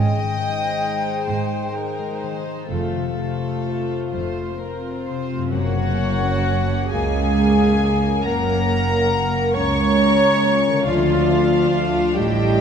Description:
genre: cinematic, emotional film score for orchestra.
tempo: 41-46 BPM (dotted quarters).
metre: 6/8.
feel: rubato.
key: unclear.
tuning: A4 = 441 Hz.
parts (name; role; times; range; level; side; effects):
clear studio violin section; second line; 0.0-12.6 s; A3 to Eb5; -30 LUFS; left 2 dB; none.
mellow silver concert flute; second line; 0.0-12.6 s; Db5 to Bb5; -29 LUFS; left 2 dB; none.
concert harp; arpeggios; 0.0-12.6 s; F2 to D6; -29 LUFS; left 7 dB; none.
dark chamber double bass section; bass; 0.0-12.6 s; F1 to D2; -24 LUFS; right 4 dB; none.
warm studio cello section; bass; 0.0-12.6 s; Db2 to A2; -24 LUFS; right 4 dB; none.
warm studio violin section; melody; 0.4-12.6 s; C5 to Db6; -27 LUFS; left 4 dB; none.
rich studio viola section; accompaniment; 0.4-12.6 s; Ab3 to Db5; -25 LUFS; right 2 dB; none.
warm clarinet; second line; 5.5-12.6 s; F4 to Db5; -27 LUFS; left 3 dB; none.
dark French horn section; sustained chords; 5.5-12.6 s; F3 to Db4; -23 LUFS; left 4 dB; none.
room: wet scoring stage reverb, RT60 2.0 s.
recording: dark, warm production.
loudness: -18 LUFS.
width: side -7 dB against mid.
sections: 0.0-5.5 A section; 5.5-12.6 B section.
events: none.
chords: 0.0 Ab; 2.7 F; 5.5 Gb; 10.9 Dm.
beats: 1.28 | 2.70 4.14 | 5.55 6.91 | 8.23 9.55 | 10.86 12.16.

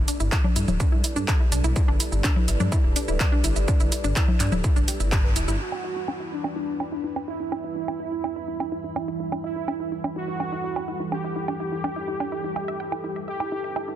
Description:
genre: melodic techno.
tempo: 125 BPM.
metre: 4/4.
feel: straight.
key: E minor.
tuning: A4 = 440 Hz.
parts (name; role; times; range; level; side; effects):
dark analog pad; sustained chords; 0.0-14.0 s; E3 to B5; -35 LUFS; right 1 dB; chorus, phaser, sidechain pumping.
wide unison pluck; arpeggios; 0.0-14.0 s; D4 to G5; -32 LUFS; right 1 dB; sidechain pumping, tape echo.
swelling detuned saw bass; bass; 0.0-5.6 s; D1 to G2; -26 LUFS; equal; sidechain pumping.
techno drum kit; drums; 0.1-13.9 s; congas, crash cymbal, handclaps, hi-hat, shaker, woodblock; -29 LUFS; right 1 dB; overdrive, sidechain pumping on hats, low-pass filter on hats, sidechain pumping on perc, low-pass filter on perc, low-pass filter on snare, sidechain pumping on cymbals, low-pass filter on cymbals.
electronic kick drum; drums; 0.3-5.2 s; none; -22 LUFS; equal; distortion, overdrive.
analog synth brass; melody; 5.6-13.9 s; D4 to G4; -30 LUFS; right 2 dB; chorus, sidechain pumping, ping-pong delay.
room: light reverb.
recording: dense, heavily limited modern master.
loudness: -22 LUFS.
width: side -11 dB against mid.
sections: 0.0-5.6 A section; 5.6-14.0 B section.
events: band accent 5.1; filter sweep on synth arpeggio sound 5.6-14.0; filter sweep on analog polysynth 5.6-14.0.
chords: 0.0 Gadd9; 5.6 Em; 13.3 Gadd9.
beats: 0.32 0.80 1.28 | 1.76 2.24 2.72 3.20 | 3.68 4.16 4.64 5.12 | 5.60 6.08 6.56 7.04 | 7.52 8.00 8.48 8.96 | 9.44 9.92 10.40 10.88 | 11.36 11.84 12.32 12.80 | 13.28 13.76.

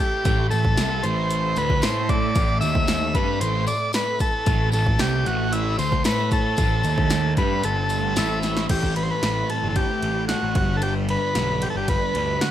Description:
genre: psychedelic rock.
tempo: 114 BPM.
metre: 4/4.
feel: straight.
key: A minor.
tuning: A4 = 436 Hz.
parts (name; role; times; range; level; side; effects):
overdriven combo organ; melody; 0.0-12.5 s; E4 to E5; -24 LUFS; equal; slapback echo.
phased string machine; sustained chords; 0.0-12.5 s; G3 to B5; -37 LUFS; right 5 dB; none.
tanpura; drone; 0.0-12.5 s; A2 to A3; -37 LUFS; equal; none.
tambourine; percussion; 0.2-8.6 s; none; -38 LUFS; left 7 dB; none.
fuzz guitar; riff; 0.3-12.5 s; G2 to A3; -27 LUFS; equal; distortion, phaser.
fuzz picked electric bass; bass; 0.3-12.4 s; G1 to A2; -26 LUFS; equal; overdrive.
punchy analog drum machine; drums; 0.3-12.5 s; crash cymbal, hi-hat, kick drum, ride cymbal, snare drum; -24 LUFS; equal; overdrive.
room: light reverb.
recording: none.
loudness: -19 LUFS.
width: side -11 dB against mid.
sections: 0.0-8.7 A section; 8.7-12.5 B section.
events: drum fill 8.4.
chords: 0.0 Am; 8.7 Am7; 10.6 G.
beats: | 0.25 0.78 1.30 1.83 | 2.36 2.88 3.41 3.94 | 4.47 4.99 5.52 6.05 | 6.58 7.11 7.64 8.16 | 8.70 9.23 9.76 10.29 | 10.82 11.35 11.88 12.41.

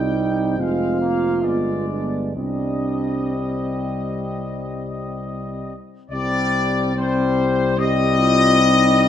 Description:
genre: classical, hymn-like piece for brass band.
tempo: 62-75 BPM.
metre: 4/4.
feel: rubato.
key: C minor.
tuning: A4 = 440 Hz.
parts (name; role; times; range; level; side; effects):
clear trumpet section; melody; 0.0-9.1 s; C5 to G5; -22 LUFS; left 4 dB; none.
mellow French horn section; second line; 0.0-9.1 s; C4 to G4; -25 LUFS; right 5 dB; none.
brilliant trombone; accompaniment; 0.0-9.1 s; G3 to Bb3; -28 LUFS; right 1 dB; none.
dark euphonium; accompaniment; 0.0-9.1 s; B3 to C4; -24 LUFS; left 2 dB; none.
dark tuba; bass; 0.0-9.1 s; F1 to C2; -24 LUFS; equal; none.
room: moderate scoring stage reverb, RT60 1.8 s.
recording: none.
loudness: -18 LUFS.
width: side -9 dB against mid.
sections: 0.0-6.1 A section; 6.1-9.1 A section.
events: none.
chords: 0.0 Cm; 0.6 Fm; 1.4 G7b9; 2.4 Cm.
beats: 0.60 1.44 | 2.36 3.31 4.26 5.20 | 6.11 6.96 7.77 8.57.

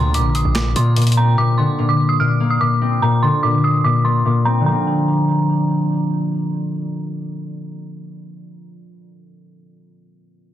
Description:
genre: hip hop, trap.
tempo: 146 BPM.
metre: 4/4.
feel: half-time.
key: Bb major.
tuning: A4 = 442 Hz.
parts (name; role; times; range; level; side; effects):
dark detuned synth bell; melody; 0.0-5.9 s; Bb5 to F6; -21 LUFS; right 2 dB; chorus, low-pass filter, tape echo.
concert harp; accompaniment; 0.0-8.9 s; Bb2 to C4; -18 LUFS; left 1 dB; low-pass filter.
hard-hitting 808-style bass; bass; 0.0-1.4 s; Bb1 to Bb2; -17 LUFS; right 1 dB; none.
downlifter; sound effects; 0.0-1.4 s; none; -42 LUFS; right 3 dB; none.
boom bap sampler-style drum kit; drums; 0.1-1.2 s; handclaps, hi-hat, snare drum; -23 LUFS; left 1 dB; none.
room: light reverb.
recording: dense, heavily limited modern master.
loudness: -15 LUFS.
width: side -12 dB against mid.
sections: 0.0-4.7 A section; 4.7-8.0 B section.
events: filter sweep 0.0-4.7.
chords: 0.0 Bbadd9.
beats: 0.14 0.55 0.96 | 1.38 1.79 2.20 2.61 | 3.02 3.43 3.84 4.25 | 4.66 5.07 5.49 5.90 | 6.31 6.72 7.13 7.54.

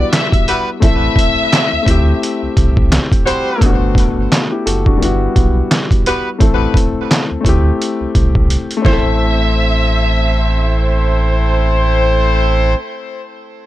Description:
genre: hip hop, boom-bap hip-hop.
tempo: 86 BPM.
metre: 4/4.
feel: swing 58% on 16ths.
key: A dorian.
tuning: A4 = 441 Hz.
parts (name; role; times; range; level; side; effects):
warm studio violin section; melody; 0.0-2.4, 8.8-11.2 s; D5 to E5; -19 LUFS; left 1 dB; high-pass filter, low-pass filter, ping-pong delay.
dark grand piano; accompaniment; 0.0-13.7 s; G3 to A4; -19 LUFS; left 3 dB; cassette tape, high-pass filter, low-pass filter.
sub bass with octave; bass; 0.0-12.7 s; F#1 to D2; -15 LUFS; equal; none.
trip hop sampler-style drum kit; drums; 0.1-9.0 s; handclaps, hi-hat, kick drum, snare drum; -14 LUFS; equal; none.
clear horn section; stabs; 0.5-12.7 s; G3 to C5; -18 LUFS; equal; high-pass filter, low-pass filter, ping-pong delay.
room: little or no reverb.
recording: none.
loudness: -11 LUFS.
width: side -14 dB against mid.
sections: 0.0-9.2 A section; 9.2-12.0 B section.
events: drum fill 8.5-9.2.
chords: 0.0 Emadd9/G; 0.8 Am; 1.9 D7sus4; 3.6 Gmaj7; 5.0 Emadd9/G; 6.4 Am; 7.5 D7sus4; 8.8 Am.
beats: 0.13 | 0.82 1.52 2.22 2.92 | 3.62 4.31 5.01 5.71 | 6.41 7.10 7.80 8.50 | 9.20 9.89 10.59 11.29.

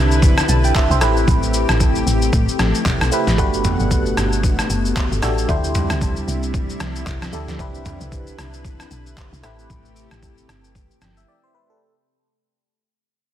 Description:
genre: amapiano.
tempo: 114 BPM.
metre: 4/4.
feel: swing 58% on 16ths.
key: unclear.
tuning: A4 = 440 Hz.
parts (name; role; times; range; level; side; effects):
barking FM electric piano; accompaniment; 0.0-11.9 s; A3 to A5; -24 LUFS; right 1 dB; chorus, phaser, tremolo.
lush unison pad; sustained chords; 0.0-11.8 s; B2 to F#5; -25 LUFS; left 1 dB; chorus.
deep log drum bass; bass; 0.0-11.3 s; F#1 to A2; -21 LUFS; equal; none.
trip hop sampler-style drum kit; drums; 0.1-11.3 s; handclaps, kick drum, rim click, shaker, snare drum, toms; -20 LUFS; equal; overdrive.
room: light reverb.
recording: dense, heavily limited modern master.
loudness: -16 LUFS.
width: side -11 dB against mid.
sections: 0.0-11.8 A section.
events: fade-out 0.0-11.8; break 11.3-11.8.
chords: 0.0 Cmaj9; 1.0 Am7; 3.4 Gmaj9; 5.5 D9sus4; 7.6 Cmaj9; 9.4 Am7.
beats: 0.23 0.75 | 1.28 1.80 2.33 2.86 | 3.38 3.91 4.43 4.96 | 5.49 6.01 6.54 7.07 | 7.59 8.12 8.65 9.17 | 9.70 10.22 10.75 11.28.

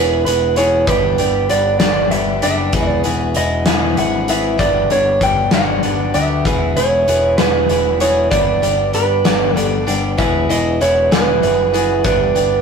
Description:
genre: quiet-loud alternative rock.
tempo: 64 BPM (dotted quarters).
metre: 6/8.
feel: straight.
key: unclear.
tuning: A4 = 440 Hz.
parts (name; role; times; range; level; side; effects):
electric guitar through a small old amp; melody; 0.0-12.6 s; B4 to G5; -16 LUFS; right 3 dB; none.
picked old ladder-braced acoustic guitar; arpeggios; 0.0-12.6 s; E3 to G#4; -20 LUFS; left 3 dB; none.
growling picked electric bass; bass; 0.0-12.6 s; E1 to D2; -21 LUFS; left 1 dB; overdrive.
big rock drum kit; drums; 0.3-12.5 s; hi-hat, kick drum, snare drum; -19 LUFS; left 2 dB; none.
room: light reverb.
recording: rough rehearsal-room recording, tube saturation.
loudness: -13 LUFS.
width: side -6 dB against mid.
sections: 0.0-12.6 A section.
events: none.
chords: 0.0 E; 0.9 G; 2.7 E; 4.6 G; 6.5 E; 8.3 G; 10.2 E; 12.0 G.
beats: | 0.87 1.80 | 2.73 3.66 | 4.59 5.52 | 6.46 7.39 | 8.32 9.25 | 10.18 11.12 | 12.05.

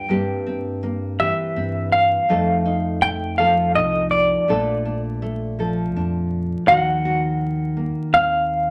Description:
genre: acoustic folk-pop ballad.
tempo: 82 BPM.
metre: 3/4.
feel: straight.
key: unclear.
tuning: A4 = 440 Hz.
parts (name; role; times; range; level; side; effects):
semi-hollow electric guitar; melody; 0.0-8.7 s; D5 to G5; -21 LUFS; equal; tremolo.
nylon-string guitar; accompaniment; 0.0-8.7 s; F2 to A4; -26 LUFS; equal; none.
fingered electric bass; bass; 0.1-8.7 s; Bb1 to G2; -32 LUFS; equal; none.
room: wet club reverb, RT60 0.5 s.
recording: vinyl crackle.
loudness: -20 LUFS.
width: mono.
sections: 0.0-6.7 A section; 6.7-8.7 A section.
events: none.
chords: 0.1 C7/G; 2.3 F7; 4.5 Bbmaj7; 6.7 Ebm6.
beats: | 0.10 0.83 1.56 | 2.29 3.02 3.75 | 4.48 5.21 5.95 | 6.68 7.41 8.14.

